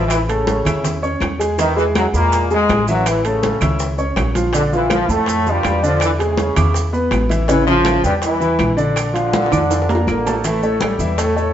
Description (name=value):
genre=latin, salsa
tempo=162 BPM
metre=4/4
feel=straight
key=unclear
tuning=A4 = 440 Hz
part: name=brilliant trombone section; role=melody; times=0.0-11.5 s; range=F#2 to F4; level=-19 LUFS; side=equal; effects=none
part: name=clear grand piano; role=accompaniment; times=0.0-11.5 s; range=C#3 to E6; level=-20 LUFS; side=equal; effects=none
part: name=upright bass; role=bass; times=0.0-11.5 s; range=A1 to F2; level=-21 LUFS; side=equal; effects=none
part: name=bongos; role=percussion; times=0.1-11.4 s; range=none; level=-28 LUFS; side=left 3 dB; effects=none
part: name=claves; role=percussion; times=0.1-11.0 s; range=none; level=-31 LUFS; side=right 1 dB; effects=none
part: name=congas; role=percussion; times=0.1-11.5 s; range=none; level=-24 LUFS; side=equal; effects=none
part: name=maracas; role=percussion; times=0.1-11.5 s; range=none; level=-33 LUFS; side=right 6 dB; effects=none
part: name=timbales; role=percussion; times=0.1-11.4 s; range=none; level=-28 LUFS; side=right 5 dB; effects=none
room=wet stone room reverb, RT60 1.2 s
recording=band playing live in one room, nothing above 7.8 kHz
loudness=-14 LUFS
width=side -10 dB against mid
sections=0.0-10.4 A section; 10.4-11.5 B section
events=drum fill 9.3-10.4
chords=0.1 A; 1.6 E; 3.1 A; 4.5 Bbmaj7; 6.0 E7; 7.5 A7; 9.0 Bb; 10.4 A